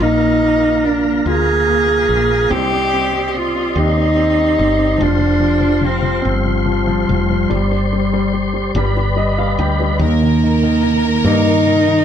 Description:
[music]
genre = six-eight pop ballad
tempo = 48 BPM (dotted quarters)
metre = 6/8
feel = straight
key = C minor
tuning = A4 = 440 Hz
[part]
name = dark cello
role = melody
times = 0.0-12.0 s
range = G3 to Ab4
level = -16 LUFS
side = right 2 dB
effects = none
[part]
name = warm baby grand piano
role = accompaniment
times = 0.0-12.0 s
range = Eb3 to G5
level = -21 LUFS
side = left 2 dB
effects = none
[part]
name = mellow tonewheel organ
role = sustained chords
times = 0.0-10.0 s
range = F4 to C6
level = -22 LUFS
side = left 1 dB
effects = chorus vibrato, fast rotary speaker
[part]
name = woody fretless electric bass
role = bass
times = 0.0-12.0 s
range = F1 to G2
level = -19 LUFS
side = equal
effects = none
[part]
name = warm symphonic violin section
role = second line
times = 10.0-12.0 s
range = Bb4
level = -21 LUFS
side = equal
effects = none
[sound]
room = moderate studio reverb, RT60 0.8 s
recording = band playing live in one room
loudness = -13 LUFS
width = side -9 dB against mid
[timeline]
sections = 0.0-10.0 A section; 10.0-12.0 B section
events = grand piano fill 8.8-10.0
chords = 0.0 Bbsus4; 2.5 Cmadd9; 5.0 Fsus2; 7.5 Gsus4; 8.8 G; 10.0 Eb

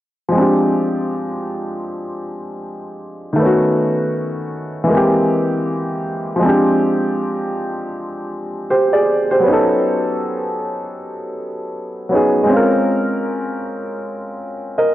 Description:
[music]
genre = hip hop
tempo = 79 BPM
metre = 4/4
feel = swing 59% on 16ths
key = unclear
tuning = A4 = 439 Hz
[part]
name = warm upright piano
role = accompaniment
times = 0.3-14.9 s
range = D#3 to Eb5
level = -16 LUFS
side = equal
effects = cassette tape
[sound]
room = moderate plate reverb, RT60 2.7 s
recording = worn, warbling old tape, cassette tape, warbly pitch drift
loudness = -15 LUFS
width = side -14 dB against mid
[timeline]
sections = 0.3-6.4 A section; 6.4-14.9 B section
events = none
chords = 0.3 Fm69; 3.4 B9; 4.9 C7b13; 6.4 Fm69; 9.5 B9; 12.5 Bbm7

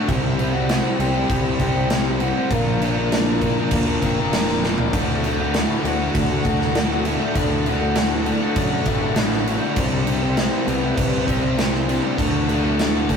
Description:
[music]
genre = quiet-loud alternative rock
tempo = 99 BPM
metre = 4/4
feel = straight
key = D mixolydian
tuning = A4 = 440 Hz
[part]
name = lead guitar through a small cranked amp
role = melody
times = 0.0-13.2 s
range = Bb3 to G5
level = -29 LUFS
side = left 2 dB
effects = overdrive
[part]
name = rich chamber string section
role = sustained chords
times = 0.0-13.2 s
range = A4 to E6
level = -34 LUFS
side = left 4 dB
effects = none
[part]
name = overdriven semi-hollow guitar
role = riff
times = 0.0-13.2 s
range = D2 to C5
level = -24 LUFS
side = left 6 dB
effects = none
[part]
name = sludgy distorted guitar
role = riff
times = 0.0-13.2 s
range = D2 to C5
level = -26 LUFS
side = right 6 dB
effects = overdrive
[part]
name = growling fingered electric bass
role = bass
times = 0.1-13.1 s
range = F1 to F#2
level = -26 LUFS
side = equal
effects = overdrive
[part]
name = big rock drum kit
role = drums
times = 0.1-13.2 s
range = crash cymbal, kick drum, snare drum, toms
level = -22 LUFS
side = right 1 dB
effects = none
[sound]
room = moderate stone room reverb, RT60 1.3 s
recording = rough rehearsal-room recording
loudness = -18 LUFS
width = side -6 dB against mid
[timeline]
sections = 0.0-13.2 A section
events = drum fill 4.6-4.9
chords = 0.1 Cmaj7; 2.5 Bb; 4.9 D; 9.8 Cmaj7; 12.2 D

